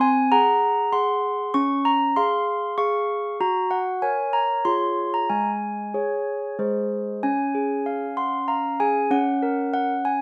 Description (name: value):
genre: classical, lullaby for handbells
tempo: 96 BPM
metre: 3/4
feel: straight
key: Db major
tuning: A4 = 440 Hz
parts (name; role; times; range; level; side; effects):
- handbells; solo; 0.0-10.2 s; Ab3 to Db6; -23 LUFS; equal; none
room: moderate studio reverb, RT60 0.6 s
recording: none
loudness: -23 LUFS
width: mono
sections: 0.0-7.2 A section; 7.2-10.2 B section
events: none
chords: 0.0 Ab7/C; 1.5 Db; 3.4 Gb; 4.6 Db/F; 5.3 Absus4; 6.6 Ab; 7.2 Db; 9.1 Gb/Db